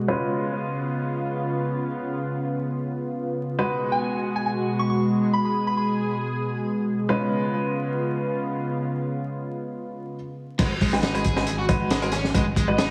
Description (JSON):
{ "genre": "breakbeat, breaks", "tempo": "137 BPM", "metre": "4/4", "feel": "straight", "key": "G# dorian", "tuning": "A4 = 441 Hz", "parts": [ { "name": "lush unison pad", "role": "sustained chords", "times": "0.0-10.1 s", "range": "B2 to G#4", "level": "-28 LUFS", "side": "equal", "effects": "chorus, sidechain pumping" }, { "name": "bright baby grand piano", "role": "stabs", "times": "0.0-12.9 s", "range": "G#3 to B4", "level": "-31 LUFS", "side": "equal", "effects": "low-pass filter, digital delay" }, { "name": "soft synth bell", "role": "melody", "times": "3.9-5.8, 10.9-12.9 s", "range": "D#5 to C#6", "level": "-32 LUFS", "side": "equal", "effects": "chorus, old record sound, digital delay" }, { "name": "overdriven semi-hollow guitar", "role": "riff", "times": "10.6-12.9 s", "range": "G#3 to G#4", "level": "-31 LUFS", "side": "equal", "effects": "tube saturation, vintage 12-bit sampler grit, digital delay" }, { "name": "saturated sub bass", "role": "bass", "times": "10.6-12.9 s", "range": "G#1", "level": "-31 LUFS", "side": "equal", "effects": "none" }, { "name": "crunchy breakbeat drum kit", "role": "drums", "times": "10.6-12.9 s", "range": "crash cymbal, hi-hat, kick drum, snare drum", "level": "-26 LUFS", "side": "equal", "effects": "none" } ], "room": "moderate lush hall reverb, RT60 1.8 s, studio ambience", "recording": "heavily compressed radio sound, multiband compression, vinyl crackle", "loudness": "-25 LUFS", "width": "mono", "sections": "0.0-10.6 A section; 10.6-12.9 B section", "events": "drop 10.6-12.9", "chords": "0.1 C#7; 3.6 G#m7; 7.1 C#7; 10.6 G#m7", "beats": "| 0.08 0.52 0.96 1.40 | 1.83 2.27 2.71 3.15 | 3.59 4.02 4.46 4.90 | 5.34 5.78 6.21 6.65 | 7.09 7.53 7.97 8.40 | 8.84 9.28 9.72 10.16 | 10.59 11.03 11.47 11.91 | 12.35 12.78" }